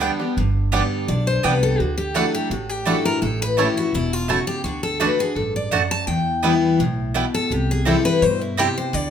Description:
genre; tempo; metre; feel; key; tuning
bluegrass; 168 BPM; 4/4; straight; G major; A4 = 440 Hz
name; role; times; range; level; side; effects
bluegrass banjo; melody; 0.0-8.7 s; G3 to G4; -29 LUFS; right 6 dB; none
picked steel-string acoustic guitar; accompaniment; 0.0-9.1 s; E2 to G4; -23 LUFS; left 2 dB; none
mandolin; stabs; 0.0-8.7 s; A3 to A5; -24 LUFS; right 6 dB; none
upright bass; bass; 0.0-9.1 s; E1 to G2; -24 LUFS; equal; none
picked steel-string acoustic guitar; melody; 1.1-9.1 s; E4 to A5; -23 LUFS; left 3 dB; none
room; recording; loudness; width
moderate large studio reverb, RT60 1.1 s; minimal, uncompressed stereo recording; -18 LUFS; side -8 dB against mid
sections
0.4-9.1 A section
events
none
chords
0.4 G; 1.8 Dadd9; 3.2 A; 4.7 D; 6.1 Em; 7.5 C

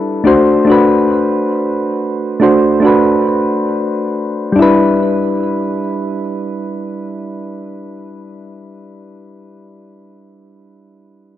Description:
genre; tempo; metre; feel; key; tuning
chillout; free time; none; none; E minor; A4 = 440 Hz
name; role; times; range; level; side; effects
soft electric-piano-like synth keys; accompaniment; 0.0-11.4 s; G3 to C5; -12 LUFS; moving between left 3 dB and right 3 dB; chorus, auto-pan, low-pass filter, tape echo
room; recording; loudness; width
light reverb; dry, gritty hardware recording; -11 LUFS; side -12 dB against mid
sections
0.0-4.6 A section; 4.6-8.9 B section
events
filter sweep on synth keys 0.0-4.6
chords
0.2 D7; 4.6 Em7

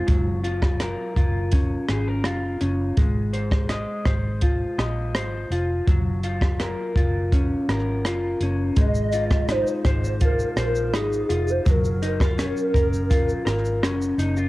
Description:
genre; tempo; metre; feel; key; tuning
indie pop, bedroom pop; 83 BPM; 4/4; straight; Ab mixolydian; A4 = 441 Hz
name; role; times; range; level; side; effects
electric guitar through a small old amp; accompaniment; 0.0-14.5 s; Gb3 to Eb5; -26 LUFS; left 1 dB; wide subtle chorus, warbly pitch drift
vintage muted fingered electric bass; bass; 0.1-14.5 s; F1 to Bb1; -26 LUFS; equal; none
compact cocktail drum kit; drums; 0.1-14.5 s; hi-hat, kick drum, rim click, shaker; -22 LUFS; equal; none
hollow clarinet-like synth lead; melody; 8.8-14.2 s; Ab4 to Eb5; -25 LUFS; equal; tremolo, ensemble chorus, cassette tape, tape echo
room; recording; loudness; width
small room ambience; home recording on cassette; -20 LUFS; side -18 dB against mid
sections
0.0-8.8 A section; 8.8-14.5 B section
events
none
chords
0.1 Gbmaj7; 3.0 Ab6; 5.9 Gbmaj7; 8.8 Ab6; 11.7 Gbmaj7

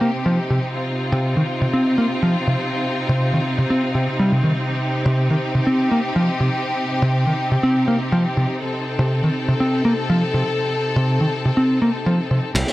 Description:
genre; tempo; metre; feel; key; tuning
breakbeat, breaks; 122 BPM; 4/4; straight; C dorian; A4 = 439 Hz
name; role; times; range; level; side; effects
clear studio string section; sustained chords; 0.0-12.7 s; C3 to A4; -22 LUFS; equal; vintage 12-bit sampler grit, sidechain pumping, low-pass filter
picked electric bass; riff; 0.0-12.4 s; C3 to C4; -18 LUFS; equal; low-pass filter, analog delay
modern bright picked electric bass; bass; 12.5-12.6 s; C2; -20 LUFS; right 1 dB; low-pass filter
crunchy breakbeat drum kit; drums; 12.5-12.7 s; kick drum, ride cymbal, snare drum; -19 LUFS; equal; high-pass filter on kick, high-pass filter on cymbals, high-pass filter on snare, high-pass filter on room
room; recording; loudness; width
moderate small room ambience, RT60 0.5 s; dry, gritty hardware recording; -17 LUFS; side -17 dB against mid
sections
0.0-12.6 A section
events
none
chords
0.0 Cm

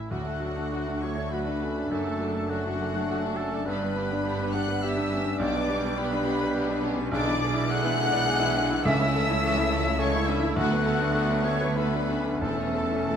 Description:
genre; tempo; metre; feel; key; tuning
classical, romantic movement for piano and orchestra; 103 BPM; 3/4; rubato; D major, A major from 7.1 s; A4 = 440 Hz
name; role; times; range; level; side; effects
clear concert grand piano; melody; 0.0-13.2 s; B1 to D5; -28 LUFS; left 1 dB; none
warm symphonic violin section; melody; 0.0-13.2 s; E5 to F#6; -35 LUFS; left 4 dB; none
small flute group; second line; 0.0-13.2 s; E4 to F#5; -34 LUFS; left 2 dB; none
warm oboe; second line; 0.0-13.2 s; E4 to F#5; -36 LUFS; right 2 dB; none
warm clarinet; second line; 0.1-13.2 s; B3 to D4; -38 LUFS; left 2 dB; none
warm symphonic violin section; second line; 0.1-13.2 s; B3 to C#5; -37 LUFS; left 2 dB; none
mellow bassoon; accompaniment; 0.1-13.2 s; G3 to A3; -35 LUFS; right 2 dB; none
rich symphonic viola section; accompaniment; 0.1-13.2 s; D3 to F#4; -36 LUFS; equal; none
mellow French horn section; sustained chords; 0.1-13.2 s; G3 to D4; -37 LUFS; left 3 dB; none
rich studio double bass section; bass; 0.1-13.2 s; E1 to D2; -35 LUFS; right 4 dB; none
rich symphonic cello section; bass; 0.1-13.2 s; C#2 to B2; -35 LUFS; right 4 dB; none
timpani; percussion; 12.4-13.2 s; E2; -36 LUFS; left 2 dB; none
room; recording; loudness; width
light reverb; close, detailed microphones; -24 LUFS; side -8 dB against mid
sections
0.1-13.2 A section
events
none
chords
0.1 D; 1.9 D/F#; 3.7 G; 5.4 G/B; 7.1 E7/B; 8.9 A/C#; 10.6 Bm7/D; 12.4 A/E

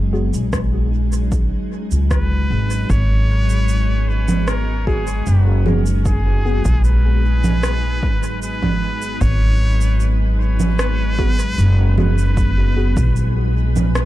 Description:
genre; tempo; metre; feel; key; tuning
ambient dub; 76 BPM; 4/4; straight; G# minor; A4 = 444 Hz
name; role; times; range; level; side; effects
soft additive organ-like pad; sustained chords; 0.0-14.1 s; F#3 to G#4; -26 LUFS; left 2 dB; ensemble chorus, built-in reverb
upright bass; bass; 0.0-14.1 s; F#1 to C#2; -16 LUFS; equal; none
mellow tine electric piano; stabs; 0.1-12.9 s; B3 to G#4; -28 LUFS; left 1 dB; phaser, dub echo
electronic cabasa, rim click and congas; drums; 0.3-14.1 s; none; -24 LUFS; right 3 dB; overdrive, dub echo
electronic kick drum; drums; 0.5-13.1 s; none; -21 LUFS; equal; overdrive
trumpet with straight mute; melody; 2.1-13.5 s; G#4 to C#5; -27 LUFS; equal; dub echo
room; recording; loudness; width
little or no reverb; dark, warm production; -15 LUFS; side -15 dB against mid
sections
0.0-2.9 A section; 2.9-14.1 B section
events
none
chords
0.0 G#m7

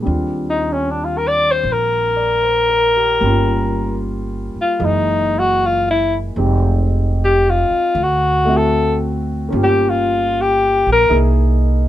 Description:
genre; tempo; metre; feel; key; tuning
jazz ballad; 76 BPM; 4/4; swing 69% on 8ths; unclear; A4 = 440 Hz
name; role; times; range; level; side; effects
warm grand piano; accompaniment; 0.0-11.9 s; Fb3 to Eb5; -22 LUFS; equal; none
upright bass; bass; 0.0-11.9 s; F1 to Eb2; -19 LUFS; right 1 dB; none
breathy alto saxophone; melody; 0.5-11.2 s; Db4 to D5; -15 LUFS; left 2 dB; none
room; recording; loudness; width
light reverb; minimal, uncompressed stereo recording; -14 LUFS; side -13 dB against mid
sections
0.0-11.9 A section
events
alto saxophone solo 0.0-11.9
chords
0.1 Ebmaj13; 3.2 Gm7b5; 4.8 Gb13; 6.4 Fm7; 7.9 D7; 9.5 Gm7b5; 11.1 C7alt

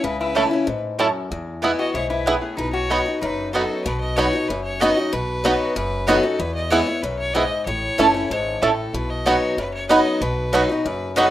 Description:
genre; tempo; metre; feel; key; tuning
bluegrass; 189 BPM; 4/4; straight; B mixolydian; A4 = 441 Hz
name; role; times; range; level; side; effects
clear fiddle; melody; 0.0-11.3 s; G#4 to D#5; -27 LUFS; equal; plate reverb
lap resonator guitar; second line; 0.0-3.8 s; B3 to F#4; -27 LUFS; left 4 dB; plate reverb
picked steel-string acoustic guitar; accompaniment; 0.0-11.3 s; E2 to F#4; -22 LUFS; left 2 dB; plate reverb
upright bass; bass; 0.0-11.3 s; F#1 to A2; -30 LUFS; equal; none
mandolin; stabs; 0.3-11.3 s; A3 to B5; -22 LUFS; right 4 dB; plate reverb
bluegrass banjo; arpeggios; 0.4-11.2 s; B3 to A4; -22 LUFS; right 2 dB; plate reverb
room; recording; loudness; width
moderate small room reverb, RT60 0.5 s; rough home demo mix; -18 LUFS; side -13 dB against mid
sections
0.0-3.9 A section; 3.9-11.3 B section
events
none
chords
0.0 A/C#; 1.3 E; 2.6 B; 6.4 E; 7.7 A; 8.9 B

